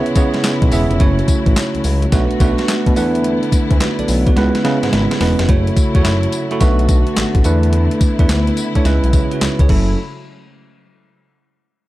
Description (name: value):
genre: R&B, new jack swing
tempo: 107 BPM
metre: 4/4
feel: swing 66% on 16ths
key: F# minor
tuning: A4 = 440 Hz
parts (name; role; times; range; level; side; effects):
- bell-like tine electric piano; accompaniment; 0.0-10.0 s; F#3 to E5; -18 LUFS; right 2 dB; none
- warm studio string section; sustained chords; 0.0-10.0 s; C#3 to F#4; -23 LUFS; left 3 dB; none
- smooth synth bass; bass; 0.1-10.0 s; E1 to C#3; -17 LUFS; equal; none
- crisp 8-bit digital drum machine; drums; 0.1-9.9 s; crash cymbal, handclaps, hi-hat, kick drum, snare drum, tambourine; -16 LUFS; equal; overdrive
room: little or no reverb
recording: dark, warm production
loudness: -12 LUFS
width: side -16 dB against mid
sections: 0.0-5.5 A section; 5.5-10.0 B section; 10.0-11.9 C section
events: drum fill 4.4-5.5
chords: 0.0 C#m7; 1.0 F#m7; 2.1 Bm7; 3.0 E7sus4; 4.4 C#m7; 5.5 F#m7; 6.6 Bm7; 7.4 E7sus4; 8.9 C#m7; 9.7 F#m7; 10.0 N.C.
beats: 0.44 | 1.00 1.56 2.12 2.68 | 3.24 3.80 4.37 4.92 | 5.49 6.05 6.61 7.17 | 7.73 8.29 8.85 9.41 | 9.97